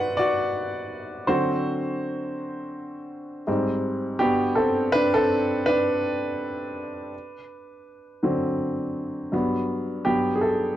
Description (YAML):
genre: hip hop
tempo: 82 BPM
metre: 4/4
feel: swing 59% on 16ths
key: G major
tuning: A4 = 441 Hz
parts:
  - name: warm upright piano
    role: solo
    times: 0.0-10.8 s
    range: G2 to F#5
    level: -23 LUFS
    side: equal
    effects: cassette tape
room: moderate studio reverb, RT60 0.6 s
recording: none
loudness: -22 LUFS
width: side -12 dB against mid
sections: 0.0-10.1 A section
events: upright piano solo 0.0-10.1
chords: 0.0 Gmaj7; 1.3 D7; 3.5 Abmaj7; 4.2 Gmaj7; 7.1 D7; 9.3 Gmaj7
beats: 0.55 | 1.28 2.01 2.74 3.47 | 4.21 4.94 5.67 6.40 | 7.13 7.86 8.60 9.33 | 10.06